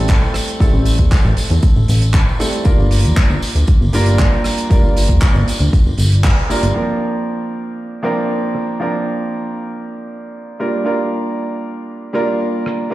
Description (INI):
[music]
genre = nu-disco, nu disco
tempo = 117 BPM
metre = 4/4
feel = straight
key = unclear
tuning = A4 = 439 Hz
[part]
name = clear baby grand piano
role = accompaniment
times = 0.0-12.9 s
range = F3 to Bb4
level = -20 LUFS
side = right 1 dB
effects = sidechain pumping, ping-pong delay
[part]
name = chorused synth bass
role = bass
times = 0.0-6.7 s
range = G1 to E2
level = -14 LUFS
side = equal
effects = none
[part]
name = damped 70s drum kit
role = drums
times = 0.1-8.7, 12.7-12.8 s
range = handclaps, hi-hat, rim click, tambourine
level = -23 LUFS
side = equal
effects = low-pass filter on hats, small room ambience, low-pass filter on snare, low-pass filter on perc, low-pass filter on room
[part]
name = electronic kick drum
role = drums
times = 0.1-6.3 s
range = none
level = -14 LUFS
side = equal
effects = small room ambience
[sound]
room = light reverb, small room reverb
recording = played on a big sound system in a bare room, large studio reverb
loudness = -13 LUFS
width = side -16 dB against mid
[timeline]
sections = 0.0-6.8 A section; 6.8-12.9 B section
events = band accent 6.2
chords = 0.0 Am7; 2.7 Gm7; 6.8 Bbadd9; 10.6 Gm7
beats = 0.09 | 0.61 1.12 1.63 2.15 | 2.66 3.17 3.68 4.20 | 4.71 5.22 5.73 6.25 | 6.76 7.27 7.79 8.30 | 8.81 9.32 9.84 10.35 | 10.86 11.38 11.89 12.40 | 12.91